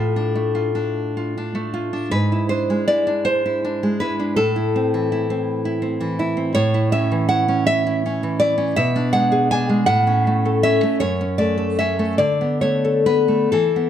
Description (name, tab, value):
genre	romantic piece for solo classical guitar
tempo	42-57 BPM (dotted quarters)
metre	6/8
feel	rubato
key	A minor, A major from 6.6 s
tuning	A4 = 439 Hz
part	nylon-string guitar	solo	0.0-13.9 s	F#2 to G#5	-17 LUFS	equal	none
room	moderate recital hall reverb, RT60 1.6 s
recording	dark, warm production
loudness	-17 LUFS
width	side -10 dB against mid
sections	0.0-13.9 A section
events	none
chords	0.0 Dm/A; 2.1 E7/G#; 4.4 Am; 6.6 A; 8.8 Bm6; 9.9 A; 11.0 F#m; 12.2 Bm7/D